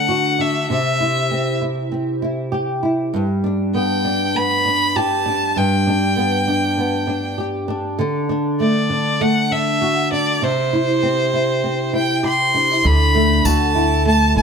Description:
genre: acoustic pop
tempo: 99 BPM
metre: 4/4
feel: swing 55% on 16ths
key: G major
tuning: A4 = 440 Hz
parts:
  - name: clear violin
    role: melody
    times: 0.0-14.4 s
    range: C5 to C6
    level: -19 LUFS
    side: right 1 dB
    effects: none
  - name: flamenco guitar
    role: accompaniment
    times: 0.0-14.4 s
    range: G2 to G4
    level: -19 LUFS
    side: equal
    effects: double-tracked left and right
  - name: upright bass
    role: bass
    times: 12.8-14.4 s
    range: A1 to D2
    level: -17 LUFS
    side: equal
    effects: none
  - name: tambourine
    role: percussion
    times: 13.5-13.6 s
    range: none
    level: -28 LUFS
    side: left 5 dB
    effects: none
room: light reverb, small room ambience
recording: none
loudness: -16 LUFS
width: side -6 dB against mid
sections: 0.0-12.8 A section; 12.8-14.4 B section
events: none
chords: 0.0 D; 0.7 C; 3.1 G; 8.0 Dadd9; 10.4 C; 12.8 Dadd9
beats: 0.10 | 0.70 1.31 1.92 2.53 | 3.13 3.74 4.35 4.95 | 5.56 6.17 6.78 7.38 | 7.99 8.60 9.20 9.81 | 10.42 11.03 11.63 12.24 | 12.85 13.45 14.06

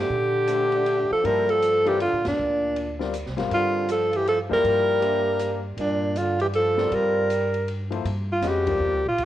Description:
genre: modal jazz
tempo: 159 BPM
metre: 3/4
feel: swing 64% on 8ths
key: G dorian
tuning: A4 = 440 Hz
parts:
  - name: breathy alto saxophone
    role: melody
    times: 0.0-9.3 s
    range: D4 to Bb4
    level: -22 LUFS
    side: equal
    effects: cassette tape
  - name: bright trombone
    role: second line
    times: 0.0-7.7 s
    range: Bb2 to G3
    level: -30 LUFS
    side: right 7 dB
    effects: cassette tape
  - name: upright bass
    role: bass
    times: 0.0-9.3 s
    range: Ab1 to Bb2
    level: -31 LUFS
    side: equal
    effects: none
  - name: clear concert grand piano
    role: accompaniment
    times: 0.5-9.0 s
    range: F3 to F5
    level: -30 LUFS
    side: left 7 dB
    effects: cassette tape
  - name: open jazz drum kit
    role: drums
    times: 0.5-9.3 s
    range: hi-hat, kick drum, ride cymbal, snare drum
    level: -39 LUFS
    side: equal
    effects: none
room: moderate digital room reverb, RT60 1.2 s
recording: home recording on cassette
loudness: -21 LUFS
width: side -13 dB against mid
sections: 0.0-8.1 A section; 8.1-9.3 B section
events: band accent 2.2; alto saxophone solo 8.1-9.3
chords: 0.0 Gm11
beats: | 0.11 0.49 0.86 | 1.24 1.62 2.00 | 2.38 2.76 3.13 | 3.51 3.89 4.27 | 4.65 5.03 5.40 | 5.78 6.16 6.54 | 6.92 7.29 7.67 | 8.05 8.43 8.81 | 9.19

